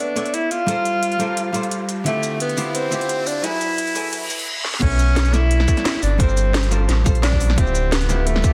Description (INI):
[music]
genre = liquid drum and bass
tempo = 174 BPM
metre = 4/4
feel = straight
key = unclear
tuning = A4 = 439 Hz
[part]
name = breathy tenor saxophone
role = melody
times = 0.0-8.5 s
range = A3 to F4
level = -25 LUFS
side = equal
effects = low-pass filter, digital delay
[part]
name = hollow-body jazz guitar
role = accompaniment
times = 0.0-8.5 s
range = D3 to E5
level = -28 LUFS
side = equal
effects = dub echo
[part]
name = riser and reverse cymbal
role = sound effects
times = 1.5-4.8 s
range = none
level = -33 LUFS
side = equal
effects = none
[part]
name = garage drum kit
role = drums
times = 0.2-8.5 s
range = crash cymbal, hi-hat, shaker, snare drum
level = -27 LUFS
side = equal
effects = none
[part]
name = sub bass with octave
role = bass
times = 4.8-8.4 s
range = D1 to B1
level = -20 LUFS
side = equal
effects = none
[part]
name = electronic kick drum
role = drums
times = 4.8-8.5 s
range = none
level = -21 LUFS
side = equal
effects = none
[sound]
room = moderate plate reverb, RT60 1.5 s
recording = dense, heavily limited modern master, high-pass filter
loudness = -20 LUFS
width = mono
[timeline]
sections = 0.0-4.8 A section; 4.8-8.5 B section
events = build-up 0.0-4.8; filter sweep 0.0-4.8; riser 1.5-4.5; reverse cymbal 4.1-4.8; drum fill 4.6; drop 4.8-8.5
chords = 0.0 Bm11; 0.5 Gm11; 2.1 Dm11; 3.4 F#m11; 4.8 Bm11; 6.0 Gm11; 7.6 Dm11